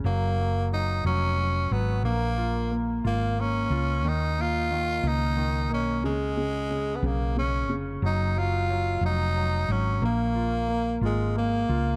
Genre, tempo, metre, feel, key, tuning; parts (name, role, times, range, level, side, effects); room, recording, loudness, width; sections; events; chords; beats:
pop; 60 BPM (dotted quarters); 6/8; straight; Eb minor; A4 = 439 Hz
bright concert grand piano; accompaniment; 0.0-12.0 s; Db3 to F4; -33 LUFS; equal
hollow-body short-scale fingered electric bass; bass; 0.0-12.0 s; F1 to Eb2; -29 LUFS; equal
raspy tenor saxophone; melody; 0.1-12.0 s; Ab3 to F4; -31 LUFS; equal; analog delay
light reverb, small room ambience; dark, warm production; -26 LUFS; mono
0.0-12.0 A section
0.0 Gb; 2.0 Bb5; 4.0 Eb5; 6.0 Db; 8.0 Ebmadd9; 10.0 Bb5
| 0.04 1.04 | 2.04 3.04 | 4.03 5.03 | 6.03 7.03 | 8.02 9.02 | 10.02 11.01